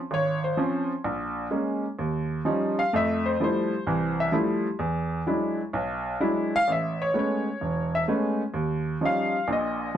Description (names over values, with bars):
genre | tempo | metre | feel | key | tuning
solo jazz | 128 BPM | 4/4 | swing 68% on 8ths | unclear | A4 = 440 Hz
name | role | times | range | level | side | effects
clear upright piano | solo | 0.1-10.0 s | E1 to F5 | -24 LUFS | equal | none
room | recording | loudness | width
moderate studio reverb, RT60 0.6 s | dark, warm production | -24 LUFS | side -10 dB against mid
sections
0.0-6.7 A section; 6.7-10.0 A section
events
upright piano solo 0.0-10.0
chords
0.0 Dbmaj7; 1.0 Bbm7; 2.0 Eb9; 2.9 Fmaj9; 4.8 E9; 6.7 Amaj9; 8.5 D#9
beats
0.10 0.57 | 1.04 1.51 1.98 2.44 | 2.91 3.38 3.85 4.32 | 4.79 5.26 5.72 6.19 | 6.66 7.13 7.60 8.07 | 8.54 9.00 9.47 9.94